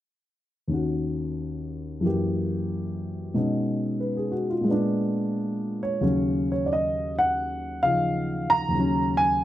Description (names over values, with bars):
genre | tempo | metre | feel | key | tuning
solo jazz | 90 BPM | 4/4 | swing 68% on 8ths, rubato | Eb minor | A4 = 440 Hz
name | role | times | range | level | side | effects
dark baby grand piano | solo | 0.7-9.4 s | Eb2 to Bb5 | -23 LUFS | equal | none
room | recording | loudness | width
light reverb | none | -23 LUFS | side -13 dB against mid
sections
0.7-6.0 A section; 6.0-9.4 B section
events
none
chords
0.7 Ebm7; 2.0 Gb7b9; 3.3 B69; 4.7 Bb7b9; 6.0 Ebm9